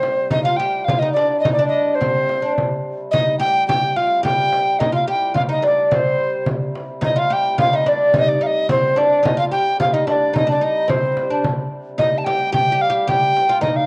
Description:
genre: medieval dance.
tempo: 108 BPM.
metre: 2/4.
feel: straight.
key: C minor.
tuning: A4 = 439 Hz.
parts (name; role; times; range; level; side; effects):
mellow soprano recorder; melody; 0.0-13.9 s; C5 to A5; -20 LUFS; equal; none.
oud; second line; 0.0-13.9 s; C4 to G4; -25 LUFS; equal; cassette tape.
pedal harmonium; drone; 0.0-13.9 s; C3 to G3; -33 LUFS; equal; cassette tape.
frame drum; percussion; 0.0-13.9 s; none; -26 LUFS; equal; none.
room: moderate spring reverb, RT60 1.8 s, small room ambience.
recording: home recording on cassette.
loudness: -18 LUFS.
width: mono.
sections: 0.0-7.0 A section; 7.0-13.9 A section.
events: speeding up 0.0-13.9.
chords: none.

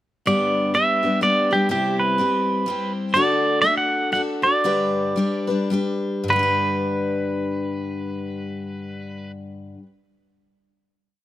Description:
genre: country.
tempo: 100-125 BPM.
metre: 3/4.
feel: swing 60% on 8ths.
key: G major.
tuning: A4 = 442 Hz.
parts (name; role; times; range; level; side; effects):
pedal steel guitar; melody; 0.3-9.3 s; G4 to F#5; -21 LUFS; right 1 dB; none.
picked steel-string acoustic guitar; accompaniment; 0.3-9.9 s; G2 to B4; -23 LUFS; left 2 dB; none.
room: light reverb.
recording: close, detailed microphones.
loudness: -19 LUFS.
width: side -13 dB against mid.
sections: 0.3-6.3 A section; 6.3-9.9 final chord.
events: slowing down 3.1-6.3.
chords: 0.3 G; 1.7 C; 3.1 D; 4.6 G.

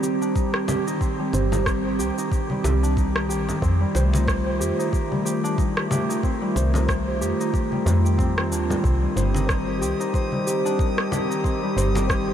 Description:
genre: organic downtempo.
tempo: 92 BPM.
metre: 4/4.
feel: swing 57% on 16ths.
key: C dorian.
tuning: A4 = 440 Hz.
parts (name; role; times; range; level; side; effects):
warbly tape-like pad; sustained chords; 0.0-12.3 s; Eb3 to G4; -27 LUFS; right 2 dB; chorus, built-in reverb, sidechain pumping.
concert harp; arpeggios; 0.0-12.3 s; G3 to C5; -26 LUFS; left 2 dB; diffuse ambient delay.
electronic cabasa and rim click; drums; 0.0-12.2 s; none; -31 LUFS; equal; none.
electronic kick drum; drums; 0.4-12.2 s; none; -24 LUFS; equal; none.
congas; percussion; 0.7-12.1 s; none; -33 LUFS; left 1 dB; none.
woody FM bass; bass; 1.3-12.3 s; G1 to F2; -23 LUFS; equal; sidechain pumping.
drifting glass-harmonics texture; texture; 9.1-12.3 s; Eb3 to Eb6; -34 LUFS; right 1 dB; chorus, built-in reverb.
room: moderate huge ambient reverb, RT60 6.9 s.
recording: dreamy mix soaked in reverb.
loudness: -20 LUFS.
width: side -10 dB against mid.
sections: 0.0-12.3 A section.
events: none.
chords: 0.0 Cm; 3.6 F7; 8.8 Cm.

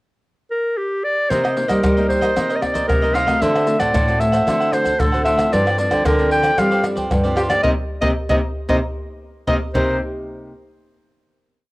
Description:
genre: samba and choro.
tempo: 114 BPM.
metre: 4/4.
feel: straight.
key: C minor.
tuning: A4 = 441 Hz.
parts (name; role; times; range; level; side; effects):
clear clarinet; melody; 0.5-10.0 s; G4 to G5; -19 LUFS; equal; cassette tape, plate reverb.
cavaquinho; accompaniment; 1.3-10.0 s; D4 to F#5; -25 LUFS; right 2 dB; cassette tape, plate reverb.
nylon-string guitar; accompaniment; 1.3-10.5 s; G2 to G4; -27 LUFS; left 1 dB; cassette tape, plate reverb.
nylon-string guitar; bass; 1.3-10.0 s; G2 to C4; -21 LUFS; equal; none.
maracas, surdo, pandeiro and tamborim; percussion; 1.3-9.9 s; none; -23 LUFS; equal; none.
room: moderate studio reverb, RT60 0.6 s.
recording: home recording on cassette.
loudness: -16 LUFS.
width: side -21 dB against mid.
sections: 0.0-1.3 pickup bar; 1.3-9.7 A section; 9.7-11.7 final chord.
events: band accent 7.6-9.7.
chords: 0.0 N.C.; 1.3 Cm7; 3.4 D7; 5.5 G7sus4; 7.6 Cm7.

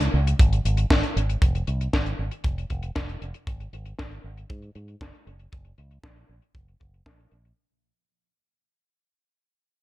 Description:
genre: italo disco.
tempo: 117 BPM.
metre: 4/4.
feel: straight.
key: unclear.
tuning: A4 = 438 Hz.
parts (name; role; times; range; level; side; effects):
fingered electric bass with an envelope filter; bass; 0.0-7.5 s; F1 to Ab2; -26 LUFS; equal; none.
tight funk drum kit; drums; 0.0-7.6 s; hi-hat, snare drum; -28 LUFS; equal; low-pass filter on hats, small room ambience, low-pass filter on snare, low-pass filter on room, gated reverb.
kick drum; drums; 0.4-7.2 s; none; -22 LUFS; equal; small room ambience.
room: little or no reverb.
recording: none.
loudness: -22 LUFS.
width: side -17 dB against mid.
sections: 0.0-7.6 A section.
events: fade-out 0.0-7.6; filter sweep on drum 0.0-7.6.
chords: none.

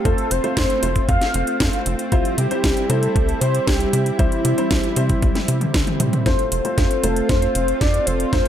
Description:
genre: italo disco.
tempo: 116 BPM.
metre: 4/4.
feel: straight.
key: F major.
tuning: A4 = 442 Hz.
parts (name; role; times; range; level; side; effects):
wide unison lead; melody; 0.0-8.5 s; E4 to F5; -23 LUFS; equal; digital delay.
lush unison pad; sustained chords; 0.0-8.5 s; G3 to F4; -26 LUFS; right 1 dB; chorus.
dark grand piano; stabs; 0.0-8.5 s; G3 to C5; -28 LUFS; left 4 dB; low-pass filter.
tight sequencer bass; bass; 0.1-8.4 s; F1 to C3; -22 LUFS; equal; none.
electronic kick drum; drums; 0.1-8.4 s; none; -20 LUFS; equal; none.
house drum kit; drums; 0.1-8.5 s; hi-hat, snare drum, toms; -24 LUFS; equal; overdrive.
room: light reverb.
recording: none.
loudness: -17 LUFS.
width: side -10 dB against mid.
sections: 0.0-6.3 A section; 6.3-8.5 B section.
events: drum fill 5.2-6.3, 6.3-8.5; filter sweep on grand piano 6.3-8.5.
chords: 0.0 F; 2.1 C; 6.3 F.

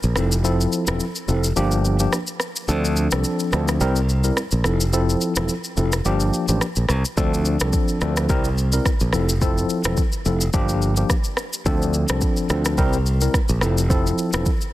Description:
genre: afrobeats.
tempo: 107 BPM.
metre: 4/4.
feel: swing 55% on 16ths.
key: unclear.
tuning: A4 = 440 Hz.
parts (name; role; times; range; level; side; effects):
modern bright fingered electric bass; bass; 0.0-14.4 s; E1 to D2; -21 LUFS; equal; none.
afro-pop drum kit; drums; 0.0-14.7 s; kick drum, rim click, shaker; -24 LUFS; equal; soft clipping on snare.
tine electric piano; accompaniment; 0.2-14.5 s; F3 to Bb4; -23 LUFS; left 1 dB; medium stereo tremolo.
room: digital ambience.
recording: dense, heavily limited modern master.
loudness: -18 LUFS.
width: side -16 dB against mid.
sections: 0.0-14.7 A section.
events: break 0.0-7.2.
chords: 0.2 Fmaj7; 1.6 Gm7; 2.7 Dm7; 3.8 C7; 4.6 Fmaj7; 6.1 Gm7; 7.2 Dm7; 8.3 C7; 9.1 Fmaj7; 10.5 Gm7; 11.7 Dm7; 12.8 C7; 13.6 Fmaj7.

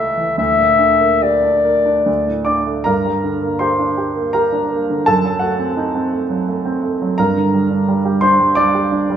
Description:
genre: classical, romantic duo for clarinet and grand piano.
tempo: 69-87 BPM.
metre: 3/4.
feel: rubato.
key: G minor.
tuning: A4 = 441 Hz.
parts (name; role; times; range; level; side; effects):
mellow clarinet; melody; 0.0-2.5 s; D5 to E5; -14 LUFS; left 4 dB; none.
warm grand piano; accompaniment; 0.0-9.2 s; C#2 to D6; -15 LUFS; right 2 dB; none.
room: wet recital hall reverb, RT60 1.5 s.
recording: minimal, uncompressed stereo recording.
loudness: -14 LUFS.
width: side -9 dB against mid.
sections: 0.0-2.9 A section; 2.9-9.2 B section.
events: none.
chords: 0.4 Gm/D; 2.1 D5; 2.9 Gm; 5.1 F#dim7; 7.2 Gm.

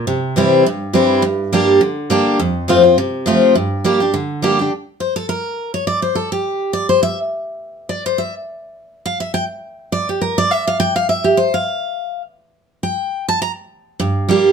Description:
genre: bluegrass.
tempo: 207 BPM.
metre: 4/4.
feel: swing 54% on 8ths.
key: G dorian.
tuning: A4 = 440 Hz.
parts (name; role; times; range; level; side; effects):
picked steel-string acoustic guitar; solo; 0.0-14.5 s; F2 to Bb5; -14 LUFS; equal; none.
room: moderate studio reverb, RT60 0.6 s.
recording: none.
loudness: -15 LUFS.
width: side -6 dB against mid.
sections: 0.0-4.7 A section; 4.7-14.0 B section.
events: steel-string acoustic guitar solo 4.7-14.0.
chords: 0.1 C; 1.2 Gm; 2.4 F; 3.6 Gm; 4.7 N.C.; 14.0 Gm.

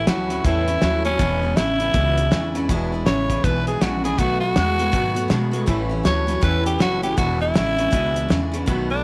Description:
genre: rockabilly.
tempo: 160 BPM.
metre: 4/4.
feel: swing 62% on 8ths.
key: E mixolydian.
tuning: A4 = 440 Hz.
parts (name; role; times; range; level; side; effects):
growling tenor saxophone; melody; 0.0-9.0 s; C#4 to C#5; -25 LUFS; equal; none.
picked steel-string acoustic guitar; accompaniment; 0.0-9.0 s; E2 to F#4; -30 LUFS; equal; none.
electric guitar through a small old amp; riff; 0.0-9.0 s; E2 to G#3; -27 LUFS; equal; ensemble chorus.
upright bass; bass; 0.0-9.0 s; E1 to B2; -28 LUFS; equal; none.
cloth-damped thuddy drum kit; drums; 0.1-8.8 s; hi-hat, kick drum, snare drum; -25 LUFS; equal; none.
room: small room ambience.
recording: none.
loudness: -20 LUFS.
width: mono.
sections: 0.0-9.0 A section.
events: none.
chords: 0.0 A7; 1.2 E7; 4.2 B7; 5.7 A7; 7.2 E7.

